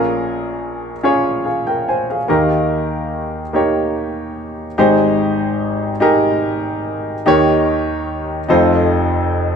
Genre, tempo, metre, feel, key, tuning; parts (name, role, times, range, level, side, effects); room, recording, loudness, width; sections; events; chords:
gospel; 48 BPM (dotted quarters); 6/8; straight; Ab major; A4 = 440 Hz
clear grand piano; solo; 0.0-9.6 s; F1 to Ab5; -15 LUFS; equal
wet large studio reverb, RT60 0.9 s; band playing live in one room; -14 LUFS; side -6 dB against mid
0.0-4.8 A section; 4.8-9.6 B section
0.0 Bbm7; 2.3 Eb; 4.8 Abmaj7; 7.2 Eb7; 8.5 F7